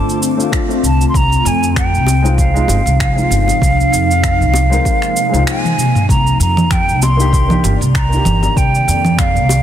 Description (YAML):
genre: sunset chillout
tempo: 97 BPM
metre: 4/4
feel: swing 56% on 16ths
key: C minor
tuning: A4 = 440 Hz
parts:
  - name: hollow concert flute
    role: melody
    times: 0.0-9.6 s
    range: F5 to C6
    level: -17 LUFS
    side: right 2 dB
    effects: ping-pong delay
  - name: dark baby grand piano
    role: accompaniment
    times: 0.0-9.6 s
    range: Ab3 to Bb4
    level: -22 LUFS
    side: moving between left 6 dB and right 2 dB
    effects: auto-pan, vintage 12-bit sampler grit, digital delay
  - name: ethereal airy pad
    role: sustained chords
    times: 0.0-9.6 s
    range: C3 to D5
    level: -20 LUFS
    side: left 2 dB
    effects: ensemble chorus, built-in reverb
  - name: smooth R&B drum kit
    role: drums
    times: 0.1-9.6 s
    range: congas, finger snaps, shaker, toms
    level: -19 LUFS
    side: right 1 dB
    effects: overdrive, soft clipping on snare
  - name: electronic kick drum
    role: drums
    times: 0.5-9.3 s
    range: none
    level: -17 LUFS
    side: equal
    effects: overdrive
  - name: upright bass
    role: bass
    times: 0.8-9.6 s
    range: G1 to F2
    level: -15 LUFS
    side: equal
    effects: none
  - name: bongos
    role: percussion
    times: 2.1-9.6 s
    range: none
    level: -26 LUFS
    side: left 5 dB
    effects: none
room: small room ambience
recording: dense, heavily limited modern master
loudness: -11 LUFS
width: side -10 dB against mid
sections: 0.0-6.1 A section; 6.1-9.6 A section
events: kick drops out 5.5-6.1; band accent 5.5-5.8; drum fill 5.6-6.1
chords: 0.0 Dm7; 1.1 Ab69; 6.1 Cm9